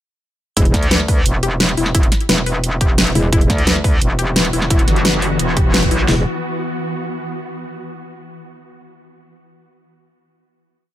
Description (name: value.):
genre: dark technical drum and bass.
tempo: 174 BPM.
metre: 4/4.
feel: straight.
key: E minor.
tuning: A4 = 440 Hz.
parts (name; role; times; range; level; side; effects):
warbly dusty pluck; arpeggios; 0.6-6.2 s; E4 to B4; -24 LUFS; left 5 dB; chorus, sidechain pumping, ping-pong delay.
metallic wobble bass; bass; 0.6-0.7, 3.2-3.5, 6.1-6.2 s; E1; -16 LUFS; equal; chorus, overdrive.
dubstep drum kit; drums; 0.6-6.2 s; handclaps, kick drum, snare drum; -16 LUFS; equal; none.
dubstep drum kit; drums; 0.6-6.0 s; hi-hat, snare drum; -17 LUFS; right 1 dB; none.
metallic wobble bass; bass; 0.7-6.1 s; E1 to D2; -18 LUFS; equal; chorus.
swarming drone; sustained chords; 4.1-6.2 s; E3 to F#4; -24 LUFS; left 1 dB; built-in reverb, sidechain pumping.
room: digital ambience.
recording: none.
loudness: -14 LUFS.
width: side -13 dB against mid.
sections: 0.6-6.1 drop; 6.1-7.5 final chord.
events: drop 0.6-6.1; band accent 5.7.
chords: 0.6 Emadd9; 6.1 Esus2.